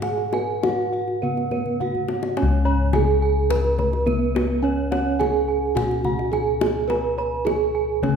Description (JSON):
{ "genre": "Javanese gamelan", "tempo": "106 BPM", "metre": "4/4", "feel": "straight", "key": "C# slendro", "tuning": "A4 = 439 Hz", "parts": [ { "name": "gamelan-type bronze metallophone", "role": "melody", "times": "0.0-8.2 s", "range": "B3-40c to B4-40c", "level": "-23 LUFS", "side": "right 5 dB", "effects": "none" }, { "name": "gamelan-type bossed gongs", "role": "arpeggios", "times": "0.0-8.2 s", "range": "B4-40c to B5-40c", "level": "-30 LUFS", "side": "left 2 dB", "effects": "none" }, { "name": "gamelan-type bronze metallophone", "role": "arpeggios", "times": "0.0-8.2 s", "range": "B4-40c to B5-40c", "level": "-30 LUFS", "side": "right 4 dB", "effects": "none" }, { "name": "gamelan-type bossed gongs", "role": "bass", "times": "0.0-8.2 s", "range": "C#2 to B4-40c", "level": "-24 LUFS", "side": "left 2 dB", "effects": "none" }, { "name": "kendang", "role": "percussion", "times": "0.0-8.2 s", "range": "none", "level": "-28 LUFS", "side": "left 5 dB", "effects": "none" } ], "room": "moderate scoring stage reverb, RT60 1.5 s", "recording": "minimal, uncompressed stereo recording", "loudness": "-19 LUFS", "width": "side -6 dB against mid", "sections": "0.0-2.4 A section; 2.4-8.2 B section", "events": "drum fill 1.7-2.4", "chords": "none", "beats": "| 0.03 0.63 1.22 1.81 | 2.38 2.94 3.51 4.07 | 4.64 5.20 5.77 6.33 | 6.90 7.46 8.03" }